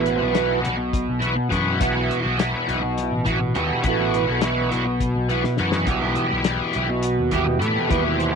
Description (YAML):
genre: psychedelic rock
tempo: 207 BPM (eighths)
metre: 7/8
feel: straight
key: unclear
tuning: A4 = 439 Hz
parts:
  - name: combo organ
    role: sustained chords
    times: 0.0-8.4 s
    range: G3 to C5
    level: -26 LUFS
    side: right 15 dB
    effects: none
  - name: crunchy overdriven guitar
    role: riff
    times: 0.0-8.4 s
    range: B2 to G4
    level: -22 LUFS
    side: left 1 dB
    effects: rotary speaker
  - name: picked electric bass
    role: bass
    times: 0.0-8.3 s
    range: A1 to A2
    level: -26 LUFS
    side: left 1 dB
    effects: none
  - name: cloth-damped thuddy drum kit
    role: drums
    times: 0.1-8.3 s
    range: hi-hat, kick drum, snare drum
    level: -26 LUFS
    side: left 4 dB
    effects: none
room: little or no reverb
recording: 1960s-style stereo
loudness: -19 LUFS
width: side -6 dB against mid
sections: 0.0-8.4 A section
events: transistor combo organ solo 0.0-8.4; drum fill 5.4-5.9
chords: 0.0 Bsus4; 5.9 Emadd9/B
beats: 0.07 0.36 0.65 0.94 1.24 1.53 | 1.82 2.11 2.40 2.69 2.98 3.27 3.56 | 3.85 4.14 4.43 4.72 5.01 5.30 5.59 | 5.88 6.17 6.46 6.75 7.04 7.33 7.62 | 7.91 8.20